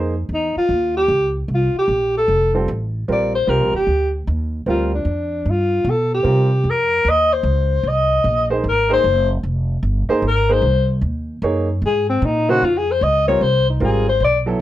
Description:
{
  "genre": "jazz, small-group swing and bop",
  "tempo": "151 BPM",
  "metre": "4/4",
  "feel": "swing 65% on 8ths",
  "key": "F minor",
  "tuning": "A4 = 440 Hz",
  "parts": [
    { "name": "clear upright piano", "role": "accompaniment", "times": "0.0-0.1, 2.5-14.6 s", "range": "Db3 to Db5", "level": "-21 LUFS", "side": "right 3 dB", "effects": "none" },
    { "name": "upright bass", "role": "bass", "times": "0.0-14.6 s", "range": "F1 to C3", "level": "-20 LUFS", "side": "equal", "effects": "none" },
    { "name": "breathy alto saxophone", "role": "melody", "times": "0.3-14.4 s", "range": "C4 to Eb5", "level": "-17 LUFS", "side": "left 2 dB", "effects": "none" }
  ],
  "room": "light reverb",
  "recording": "none",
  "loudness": "-15 LUFS",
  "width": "side -13 dB against mid",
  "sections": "0.0-12.6 A section; 12.6-14.6 A section",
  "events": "alto saxophone solo 0.0-14.6",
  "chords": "0.0 F7sus2; 1.5 C5; 2.3 Fadd9; 3.1 Bb6; 4.7 Dmadd11; 5.5 G7; 6.3 Cm7; 7.8 Ab9; 9.4 Fm9; 11.0 Ebm7; 11.8 Abadd9; 12.6 Dbmaj7"
}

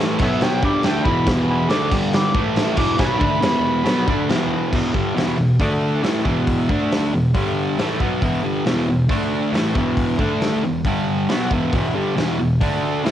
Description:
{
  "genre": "garage rock duo or trio",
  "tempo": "137 BPM",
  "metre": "4/4",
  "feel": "straight",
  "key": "unclear",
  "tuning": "A4 = 439 Hz",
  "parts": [
    { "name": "fuzz guitar", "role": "riff", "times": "0.0-13.1 s", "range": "E2 to D4", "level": "-18 LUFS", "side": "equal", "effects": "distortion, cassette tape" },
    { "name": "overdriven harmonica", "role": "melody", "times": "0.2-4.3 s", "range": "A4 to D6", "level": "-23 LUFS", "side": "right 1 dB", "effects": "none" },
    { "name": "raw garage drum kit", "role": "drums", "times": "0.2-13.1 s", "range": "crash cymbal, hi-hat, kick drum, snare drum", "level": "-23 LUFS", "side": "equal", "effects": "cassette tape" }
  ],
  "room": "light reverb",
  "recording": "home recording on cassette",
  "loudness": "-17 LUFS",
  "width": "side -11 dB against mid",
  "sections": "0.0-4.7 A section; 4.7-13.1 B section",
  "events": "harmonica solo 0.0-4.7",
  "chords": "0.2 B5; 0.6 E5; 1.9 G5; 2.3 A5; 2.8 E5; 5.6 D5; 6.0 E5; 6.7 D5; 7.1 E5; 7.3 G5; 7.8 E5; 9.1 D5; 9.5 E5; 10.2 D5; 10.6 E5; 10.9 G5; 11.3 E5; 12.6 D5"
}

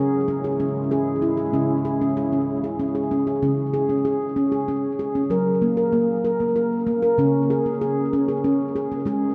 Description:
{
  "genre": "world meditative, meditative tuned percussion",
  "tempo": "64 BPM (dotted quarters)",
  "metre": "6/8",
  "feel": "straight",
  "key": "C# kumoi",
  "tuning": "A4 = 440 Hz",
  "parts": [
    { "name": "deep dark ambient pad", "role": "sustained chords", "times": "0.0-3.4 s", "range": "C#3 to E4", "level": "-34 LUFS", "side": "equal", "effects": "chorus, built-in reverb" },
    { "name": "handpan", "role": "arpeggios", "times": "0.0-9.3 s", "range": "C#3 to A#4", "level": "-22 LUFS", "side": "equal", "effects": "delay" }
  ],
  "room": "wet huge ambient reverb, RT60 8.0 s",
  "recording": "in a vast, echoing space",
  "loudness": "-22 LUFS",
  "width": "mono",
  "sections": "0.0-3.4 A section; 3.4-9.3 B section",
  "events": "none",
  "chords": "0.0 C#m; 3.4 C#5; 5.3 F#; 7.2 C#5"
}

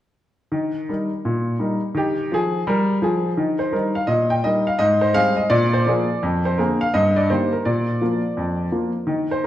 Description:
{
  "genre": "jazz, stride piano",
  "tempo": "169 BPM",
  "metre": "4/4",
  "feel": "swing 64% on 8ths",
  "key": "Eb major",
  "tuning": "A4 = 442 Hz",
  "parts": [
    { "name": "clear grand piano", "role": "solo", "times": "0.5-9.5 s", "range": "F2 to G5", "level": "-18 LUFS", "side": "equal", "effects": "none" }
  ],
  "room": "wet recital hall reverb, RT60 1.4 s",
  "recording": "recorded in a church or concert hall",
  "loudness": "-18 LUFS",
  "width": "side -12 dB against mid",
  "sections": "0.5-3.4 A section; 3.4-9.5 B section",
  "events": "none",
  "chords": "0.5 Eb; 4.8 Abmaj7; 5.5 Bb7; 6.2 Bb7/F; 6.9 Eb/G; 7.7 Bb"
}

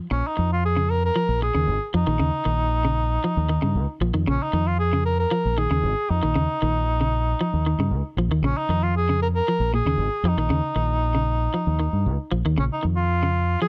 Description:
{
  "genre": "afrobeat",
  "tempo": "116 BPM",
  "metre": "4/4",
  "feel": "straight",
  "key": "Bb minor",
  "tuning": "A4 = 440 Hz",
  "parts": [
    { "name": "clean electric guitar", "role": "arpeggios", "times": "0.0-13.7 s", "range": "Bb2 to F3", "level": "-29 LUFS", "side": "equal", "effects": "none" },
    { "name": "warm cor anglais", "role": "melody", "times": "0.1-13.7 s", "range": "Db4 to Bb4", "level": "-28 LUFS", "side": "equal", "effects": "none" },
    { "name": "deep dub fingered electric bass", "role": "bass", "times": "0.1-13.6 s", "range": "Ab1 to G2", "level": "-25 LUFS", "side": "equal", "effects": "none" }
  ],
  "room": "small room ambience",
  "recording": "dry, close 1970s-style studio recording",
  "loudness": "-23 LUFS",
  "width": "mono",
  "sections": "0.1-13.7 A section",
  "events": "none",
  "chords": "0.1 Bbm7; 2.2 Eb7(no3); 4.3 Bbm7; 6.4 Eb7(no3); 8.4 Bbm7; 10.5 Eb7(no3); 12.6 Bbm (rootless)"
}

